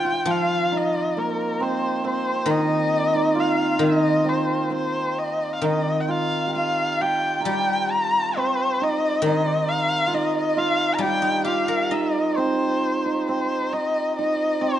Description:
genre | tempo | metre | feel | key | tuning
chinese traditional, Chinese chamber ensemble | 67 BPM | 2/4 | rubato | unclear | A4 = 440 Hz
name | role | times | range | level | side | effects
dark erhu | melody | 0.0-14.8 s | Bb4 to Bb5 | -23 LUFS | left 2 dB | none
hammered dulcimer | second line | 0.0-14.8 s | Bb3 to Bb4 | -24 LUFS | right 3 dB | none
guzheng | accompaniment | 0.0-13.7 s | Eb3 to Eb5 | -28 LUFS | left 3 dB | none
room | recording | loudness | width
moderate scoring stage reverb, RT60 1.6 s | nothing above 10.6 kHz, faint mains hum | -20 LUFS | side -11 dB against mid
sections
0.0-12.8 A section; 12.8-14.8 B section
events
none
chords
none

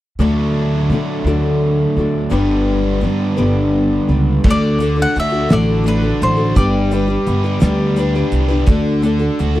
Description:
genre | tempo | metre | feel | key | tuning
folk rock and heartland rock | 56 BPM (dotted quarters) | 6/8 | straight | D major | A4 = 440 Hz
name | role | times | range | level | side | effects
picked steel-string acoustic guitar | accompaniment | 0.2-9.6 s | G2 to B4 | -19 LUFS | left 4 dB | none
overdriven electric guitar | riff | 0.2-9.6 s | G2 to G4 | -20 LUFS | right 2 dB | none
upright bass | bass | 0.2-9.6 s | G1 to D3 | -17 LUFS | right 1 dB | none
cloth-damped thuddy drum kit | drums | 4.4-9.6 s | crash cymbal, hi-hat, kick drum, snare drum | -15 LUFS | right 1 dB | none
bowl-back mandolin | melody | 4.5-7.9 s | B4 to F#5 | -21 LUFS | left 1 dB | none
room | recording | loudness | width
little or no reverb | dry, close 1970s-style studio recording | -13 LUFS | side -15 dB against mid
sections
0.2-4.4 A section; 4.4-9.6 B section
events
none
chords
0.2 D; 2.3 G; 4.4 D; 6.6 G; 8.7 D

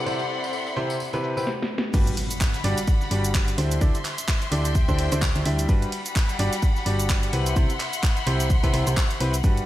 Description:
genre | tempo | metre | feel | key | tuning
piano house | 128 BPM | 4/4 | swing 57% on 16ths | G major | A4 = 440 Hz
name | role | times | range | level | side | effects
rich studio violin section | sustained chords | 0.0-9.7 s | G3 to C6 | -33 LUFS | left 1 dB | sidechain pumping
bright grand piano | riff | 0.0-9.6 s | C3 to E5 | -28 LUFS | equal | sidechain pumping, digital delay
warm studio string section | texture | 0.0-1.5, 4.5-9.7 s | C3 to G5 | -33 LUFS | left 4 dB | sidechain pumping
house drum kit | drums | 0.1-9.7 s | crash cymbal, handclaps, hi-hat, shaker, snare drum | -30 LUFS | equal | low-pass filter on perc, low-pass filter on snare, low-pass filter on cymbals, low-pass filter on hats, low-pass filter on room, gated reverb
tambourine | percussion | 0.1-1.5 s | none | -40 LUFS | left 1 dB | none
solid FM bass | bass | 1.9-9.6 s | G1 to D2 | -25 LUFS | equal | sidechain pumping
breakbeat sampler-style drum kit | drums | 1.9-9.6 s | ride cymbal, snare drum | -41 LUFS | right 2 dB | none
electronic kick drum | drums | 1.9-9.5 s | none | -22 LUFS | equal | none
impact | sound effects | 1.9-3.8 s | none | -34 LUFS | equal | none
room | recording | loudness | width
light reverb | bright 1980s-style digital production, low-pass filter | -21 LUFS | side -14 dB against mid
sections
0.0-1.9 A section; 1.9-9.7 B section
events
filter sweep 0.0-1.9; drum fill 1.5-1.9; drop 1.9-9.7; impact 1.9-3.8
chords
0.0 Cmaj7; 1.9 Gmaj7; 3.6 D9sus4; 5.7 Gmaj7; 7.3 Cmaj7

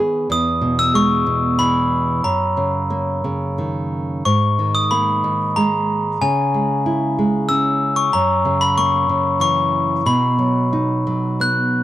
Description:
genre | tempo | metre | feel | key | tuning
children's music, lullaby | 92 BPM | 3/4 | rubato | unclear | A4 = 440 Hz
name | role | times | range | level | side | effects
nylon-string guitar | accompaniment | 0.0-11.8 s | E2 to G#4 | -19 LUFS | right 1 dB | none
glockenspiel with brass mallets | melody | 0.3-11.8 s | G#5 to F#6 | -18 LUFS | left 2 dB | none
room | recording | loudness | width
light reverb | dry, close 1970s-style studio recording | -16 LUFS | side -13 dB against mid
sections
0.0-11.8 A section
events
nylon-string guitar fill 0.0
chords
0.3 E; 2.2 F#6; 4.2 G#sus2; 6.2 C#m; 8.1 F#7; 10.1 B

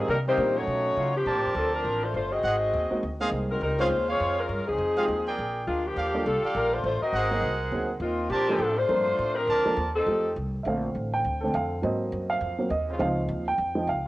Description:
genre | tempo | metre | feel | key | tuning
jazz | 204 BPM | 4/4 | swing 60% on 8ths | Bb major | A4 = 441 Hz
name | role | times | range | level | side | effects
dark saxophone section | melody | 0.0-10.3 s | F3 to Eb5 | -25 LUFS | left 1 dB | cassette tape
bright trombone section | second line | 0.0-1.2 s | Eb3 to Db4 | -33 LUFS | right 2 dB | cassette tape
dark baby grand piano | accompaniment | 0.0-0.5, 2.9-14.1 s | D3 to G5 | -28 LUFS | right 2 dB | cassette tape
upright bass | bass | 0.0-14.1 s | G1 to C#3 | -33 LUFS | equal | none
clear trumpet section | stabs | 1.3-9.9 s | G4 to A5 | -30 LUFS | right 2 dB | cassette tape
bright trombone section | sustained chords | 11.4-14.1 s | Db3 to A4 | -36 LUFS | equal | cassette tape
room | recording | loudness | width
moderate spring reverb, RT60 1.8 s, small room reverb | home recording on cassette | -24 LUFS | side -17 dB against mid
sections
0.0-1.3 A section; 1.3-10.7 B section; 10.7-14.1 C section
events
grand piano solo 10.7-14.1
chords
0.1 Cm9; 0.7 B9; 1.3 Bbmaj9; 2.4 Ab7; 3.6 Dbmaj7; 4.8 Fm7; 5.4 Bb7; 6.0 Ebmaj9#11; 7.1 Ab9; 8.3 Bbmaj9; 10.1 F7; 10.7 Bbmaj9; 11.8 Ab7; 13.0 Dbmaj7

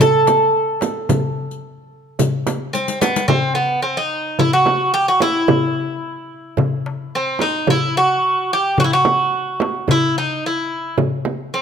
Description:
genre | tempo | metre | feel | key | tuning
Turkish makam ensemble | 109 BPM | 4/4 | straight | A makam nikriz | A4 = 441 Hz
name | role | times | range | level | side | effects
Greek bouzouki | melody | 0.0-11.6 s | B3 to A4 | -17 LUFS | right 1 dB | none
darbuka | percussion | 0.0-11.1 s | none | -22 LUFS | left 4 dB | none
frame drum | percussion | 0.0-11.4 s | none | -21 LUFS | right 6 dB | none
riq | percussion | 0.0-3.3 s | none | -25 LUFS | left 8 dB | none
room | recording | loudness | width
light reverb | close, detailed microphones | -16 LUFS | side -7 dB against mid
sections
0.0-3.3 A section; 3.3-11.6 B section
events
drum fill 2.7-3.3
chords
none

